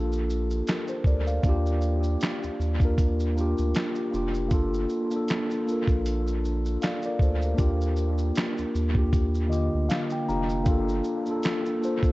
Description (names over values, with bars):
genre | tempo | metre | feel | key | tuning
lo-fi hip hop | 78 BPM | 4/4 | swing 58% on 16ths | G minor | A4 = 440 Hz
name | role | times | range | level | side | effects
mellow tine electric piano | accompaniment | 0.0-12.1 s | D3 to Bb5 | -27 LUFS | left 1 dB | medium stereo tremolo, cassette tape, dub echo
round analog bass | bass | 0.0-12.1 s | F1 to Eb2 | -26 LUFS | equal | none
dusty soul sampler-style drum kit | drums | 0.1-12.1 s | handclaps, hi-hat, kick drum, shaker, snare drum | -27 LUFS | equal | dub echo
room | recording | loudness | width
light reverb, digital ambience | echo-heavy mix, cassette tape, nothing above 8.0 kHz | -23 LUFS | side -19 dB against mid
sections
0.0-12.1 A section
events
tine electric piano fill 9.1-10.7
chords
0.0 Gm7; 1.4 Ebmaj9; 4.5 Gm7; 7.6 Ebmaj9; 10.7 Gm7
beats
0.67 | 1.43 2.20 2.97 3.74 | 4.51 5.28 6.05 6.82 | 7.59 8.36 9.13 9.89 | 10.66 11.43